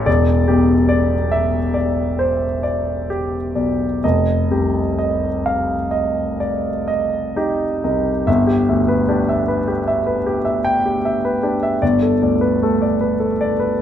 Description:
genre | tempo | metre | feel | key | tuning
classical, impressionist solo piano | 41-52 BPM (dotted quarters) | 9/8 | rubato | G major | A4 = 440 Hz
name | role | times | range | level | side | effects
warm grand piano | solo | 0.0-13.8 s | E1 to G5 | -16 LUFS | equal | none
room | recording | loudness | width
moderate recital hall reverb, RT60 1.7 s | minimal, uncompressed stereo recording | -16 LUFS | side -10 dB against mid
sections
0.0-8.3 A section; 8.3-13.8 B section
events
none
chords
0.1 Em7; 4.0 Fsus2; 8.3 G6; 11.8 Bm7/G

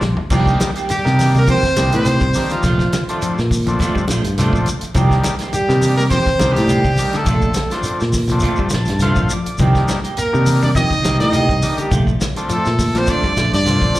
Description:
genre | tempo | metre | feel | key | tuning
afrobeat | 103 BPM | 4/4 | swing 54% on 16ths | C dorian | A4 = 440 Hz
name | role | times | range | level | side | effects
overdriven combo organ | accompaniment | 0.0-14.0 s | Eb3 to A5 | -24 LUFS | left 1 dB | slapback echo
semi-hollow electric guitar | arpeggios | 0.0-14.0 s | C3 to G3 | -26 LUFS | left 3 dB | slapback echo
semi-hollow electric guitar | stabs | 0.0-14.0 s | Eb3 to G4 | -25 LUFS | right 4 dB | wide subtle chorus, slapback echo
fingered electric bass | bass | 0.0-13.9 s | Bb1 to C3 | -18 LUFS | equal | none
warm soul drum kit | drums | 0.0-14.0 s | crash cymbal, hi-hat, kick drum, snare drum, toms | -22 LUFS | equal | none
shekere | percussion | 0.0-14.0 s | none | -27 LUFS | left 1 dB | none
congas | percussion | 0.3-14.0 s | none | -23 LUFS | equal | none
brilliant trumpet | melody | 0.9-14.0 s | F4 to Eb5 | -20 LUFS | equal | slapback echo
trombone with bucket mute | second line | 0.9-14.0 s | F3 to Eb4 | -24 LUFS | right 3 dB | none
room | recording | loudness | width
light reverb, small room reverb | live gig heard through the venue's PA, club reverb | -14 LUFS | side -16 dB against mid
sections
0.3-14.0 A section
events
drum fill 0.0-0.3; transistor combo organ fill 8.4-9.6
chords
0.3 Cm7; 2.6 Bbmaj7; 5.0 Cm7; 7.3 Bbmaj7; 9.6 Cm7; 11.9 Bbmaj7

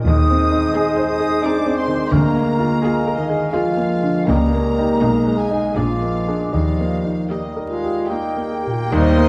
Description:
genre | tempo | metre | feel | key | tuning
classical, romantic movement for piano and orchestra | 68-88 BPM | 3/4 | rubato | Eb major | A4 = 440 Hz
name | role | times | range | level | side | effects
clear baby grand piano | melody | 0.0-9.3 s | Bb1 to C5 | -24 LUFS | equal | none
clear studio violin section | second line | 0.1-9.3 s | Eb5 to Eb6 | -36 LUFS | equal | none
mellow hollow small flute group | second line | 0.1-9.3 s | Eb5 to Eb6 | -30 LUFS | equal | none
mellow oboe | second line | 0.1-9.3 s | C5 to G5 | -34 LUFS | equal | none
warm clarinet | second line | 0.1-9.3 s | Eb4 to Eb5 | -32 LUFS | equal | none
mellow bassoon | accompaniment | 0.1-9.3 s | G3 to Bb3 | -29 LUFS | equal | none
mellow French horn section | sustained chords | 0.1-9.3 s | Eb3 to C5 | -25 LUFS | equal | none
clear studio cello section | bass | 0.1-9.3 s | Bb2 to Eb3 | -29 LUFS | equal | none
rich studio double bass section | bass | 0.1-9.3 s | Bb1 to Eb2 | -24 LUFS | equal | none
warm studio violin section | melody | 0.7-9.3 s | G4 to Eb5 | -35 LUFS | equal | none
clear studio viola section | accompaniment | 0.8-9.3 s | G3 to F4 | -30 LUFS | equal | none
clear trumpet | stabs | 7.7-9.3 s | Ab3 to Eb4 | -29 LUFS | equal | none
room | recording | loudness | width
wet scoring stage reverb, RT60 1.6 s | dark, warm production, vinyl crackle | -19 LUFS | mono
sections
0.0-8.9 A section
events
none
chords
0.1 Ab/Eb; 2.1 Bb7/D; 4.3 Eb7/Db; 5.0 Abm/Cb; 5.8 Bb7; 6.5 Eb

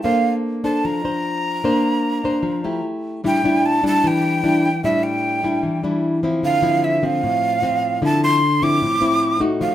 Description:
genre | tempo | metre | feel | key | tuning
bossa nova | 151 BPM | 4/4 | straight | unclear | A4 = 440 Hz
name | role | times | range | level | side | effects
breathy jazz flute | melody | 0.0-9.7 s | E5 to D6 | -20 LUFS | right 2 dB | plate reverb
nylon-string guitar | accompaniment | 0.0-9.7 s | A2 to C5 | -19 LUFS | left 1 dB | none
room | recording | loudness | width
wet small room reverb, RT60 0.5 s | heard from further back in the room | -17 LUFS | side -12 dB against mid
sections
0.0-3.2 A section; 3.2-9.7 B section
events
none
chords
0.0 Bbmaj9; 2.8 Emadd11/A; 3.2 A7sus4; 6.4 Dm9

